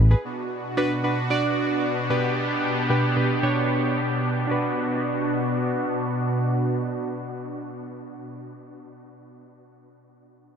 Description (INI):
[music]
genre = pop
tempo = 113 BPM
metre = 4/4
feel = straight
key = B minor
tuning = A4 = 440 Hz
[part]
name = soft electric-piano-like synth keys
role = accompaniment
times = 0.1-8.9 s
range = B2 to D5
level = -26 LUFS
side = right 1 dB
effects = chorus, low-pass filter
[part]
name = soft supersaw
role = sustained chords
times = 0.2-8.9 s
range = B2 to G4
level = -25 LUFS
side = equal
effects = wide subtle chorus, low-pass filter
[sound]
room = wet huge ambient reverb, RT60 7.5 s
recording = dreamy mix soaked in reverb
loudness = -22 LUFS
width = side -7 dB against mid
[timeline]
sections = 0.2-4.5 A section; 4.5-8.7 B section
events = none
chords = 0.2 Bm; 2.1 G/B; 4.5 Bm